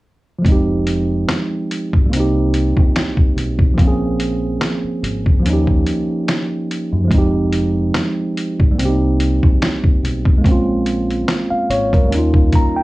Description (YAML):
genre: lo-fi hip hop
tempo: 72 BPM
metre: 4/4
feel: swing 56% on 16ths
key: Bb dorian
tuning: A4 = 440 Hz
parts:
  - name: mellow tine electric piano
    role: accompaniment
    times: 0.4-12.8 s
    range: F3 to Bb5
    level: -18 LUFS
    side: right 1 dB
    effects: cassette tape, low-pass filter
  - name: deep dub fingered electric bass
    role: bass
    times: 0.4-12.5 s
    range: F1 to Gb2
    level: -20 LUFS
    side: equal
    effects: none
  - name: lo-fi sampler-style drum kit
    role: drums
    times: 0.4-12.7 s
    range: finger snaps, hi-hat, kick drum, snare drum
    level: -15 LUFS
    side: equal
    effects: none
room: little or no reverb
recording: dry, gritty hardware recording, small room ambience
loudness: -14 LUFS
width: side -19 dB against mid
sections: 0.4-12.8 A section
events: tine electric piano fill 12.1-12.8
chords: 0.4 Fm9; 2.1 Cm7; 3.8 Bbm7; 5.4 Eb7; 7.1 Fm9; 8.8 Cm7; 10.4 Bbm7; 12.1 Eb7